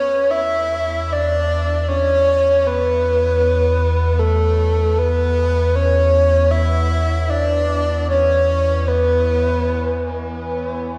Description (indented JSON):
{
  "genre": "ambient",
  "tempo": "free time",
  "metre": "none",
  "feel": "none",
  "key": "unclear",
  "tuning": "A4 = 439 Hz",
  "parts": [
    { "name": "breathy flute-like synth lead", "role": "melody", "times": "0.0-10.5 s", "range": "A4 to E5", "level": "-19 LUFS", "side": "equal", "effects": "subtle chorus, diffuse ambient delay" },
    { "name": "round analog bass", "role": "bass", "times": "0.0-11.0 s", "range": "E2", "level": "-22 LUFS", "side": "equal", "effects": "none" },
    { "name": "overtone-sweeping drone", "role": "drone", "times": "0.2-11.0 s", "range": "E3 to B3", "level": "-35 LUFS", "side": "equal", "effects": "chorus, built-in reverb" }
  ],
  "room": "wet concert hall reverb, RT60 2.1 s",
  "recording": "none",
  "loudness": "-17 LUFS",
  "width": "mono",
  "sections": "0.0-11.0 A section",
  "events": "fade-in on synth drone 0.0-11.0",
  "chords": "0.0 E5"
}